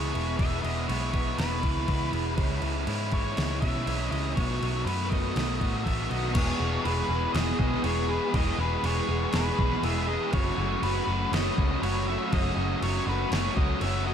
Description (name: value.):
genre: rock, shoegaze and dream pop.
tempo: 121 BPM.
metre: 4/4.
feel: straight.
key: E major.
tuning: A4 = 440 Hz.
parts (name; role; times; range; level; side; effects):
octave-fuzz lead guitar; melody; 0.0-14.1 s; B4 to E5; -33 LUFS; left 2 dB; distortion, analog delay.
overdriven electric guitar; riff; 0.0-14.1 s; E2 to G#4; -29 LUFS; equal; lush chorus.
vintage muted picked electric bass; bass; 0.0-14.1 s; E1 to B2; -30 LUFS; equal; none.
detuned 8-bit digital drum machine; drums; 0.2-13.9 s; crash cymbal, kick drum, snare drum; -31 LUFS; equal; none.
room: moderate huge ambient reverb, RT60 8.2 s.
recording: dreamy mix soaked in reverb.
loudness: -25 LUFS.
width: side -8 dB against mid.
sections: 0.0-6.4 A section; 6.4-14.1 B section.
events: kick and snare drop out 6.1.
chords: 0.0 E6; 2.4 C#m7; 4.4 B7; 6.4 E; 10.3 F#m.